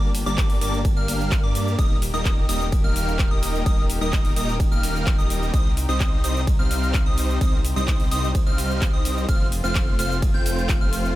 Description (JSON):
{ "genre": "EDM, festival progressive house", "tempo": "128 BPM", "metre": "4/4", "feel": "straight", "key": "unclear", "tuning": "A4 = 438 Hz", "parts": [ { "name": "dark chamber string section", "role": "sustained chords", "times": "0.0-11.2 s", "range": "C3 to Bb4", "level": "-33 LUFS", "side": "left 2 dB", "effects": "sidechain pumping" }, { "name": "plucky unison lead", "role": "arpeggios", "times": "0.0-11.1 s", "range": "D6 to G6", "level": "-30 LUFS", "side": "equal", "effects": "sidechain pumping, dub echo" }, { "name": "big supersaw lead", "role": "riff", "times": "0.0-11.1 s", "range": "G3 to G5", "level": "-28 LUFS", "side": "equal", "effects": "cassette tape, sidechain pumping, dub echo" }, { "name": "wide detuned saw bass", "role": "bass", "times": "0.0-11.1 s", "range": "Eb1 to G2", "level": "-26 LUFS", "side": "equal", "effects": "chorus, tube saturation, sidechain pumping" }, { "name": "big-room dance drum kit", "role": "drums", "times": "0.1-11.1 s", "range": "handclaps, hi-hat, ride cymbal, shaker", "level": "-31 LUFS", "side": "equal", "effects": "none" }, { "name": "electronic kick drum", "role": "drums", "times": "0.4-10.8 s", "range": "none", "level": "-20 LUFS", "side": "equal", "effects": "none" } ], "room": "little or no reverb", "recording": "none", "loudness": "-19 LUFS", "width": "side -16 dB against mid", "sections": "0.0-11.2 A section", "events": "none", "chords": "0.0 Gm; 1.8 Eb; 5.5 Cm; 9.3 F" }